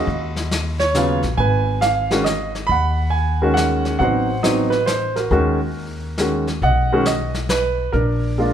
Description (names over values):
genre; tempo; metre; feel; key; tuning
jazz piano trio; 137 BPM; 3/4; swing 66% on 8ths; Eb minor; A4 = 441 Hz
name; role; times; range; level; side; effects
warm grand piano; melody; 0.0-8.5 s; Db3 to Cb6; -19 LUFS; right 2 dB; none
upright bass; bass; 0.0-8.5 s; Ab1 to Eb2; -22 LUFS; left 1 dB; none
vintage brush drum kit; drums; 0.1-8.5 s; brushed snare drum, hi-hat, kick drum, snare drum; -26 LUFS; left 2 dB; none
room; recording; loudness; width
light reverb; none; -17 LUFS; side -9 dB against mid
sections
0.0-8.5 A section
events
none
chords
0.0 Ebm7; 1.4 Abm7; 4.0 Adim7; 5.3 Ebm7; 6.6 B; 7.9 Bb7